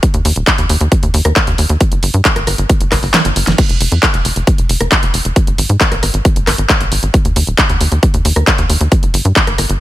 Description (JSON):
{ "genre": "uplifting trance", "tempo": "135 BPM", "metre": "4/4", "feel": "straight", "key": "unclear", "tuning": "A4 = 441 Hz", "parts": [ { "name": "big-room dance drum kit", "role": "drums", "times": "0.0-9.8 s", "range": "crash cymbal, handclaps, hi-hat, rim click, snare drum", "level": "-15 LUFS", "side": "equal", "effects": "overdrive" }, { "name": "electronic kick drum", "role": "drums", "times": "0.0-9.5 s", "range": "none", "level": "-13 LUFS", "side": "equal", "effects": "overdrive" }, { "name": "tight sequencer bass", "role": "bass", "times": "0.1-9.8 s", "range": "Eb1 to Ab2", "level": "-14 LUFS", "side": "equal", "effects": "sidechain pumping" } ], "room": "little or no reverb", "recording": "none", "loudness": "-10 LUFS", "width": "side -15 dB against mid", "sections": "0.0-9.8 A section", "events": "kick drops out 3.1-3.6; drum fill 3.1-3.6", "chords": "none" }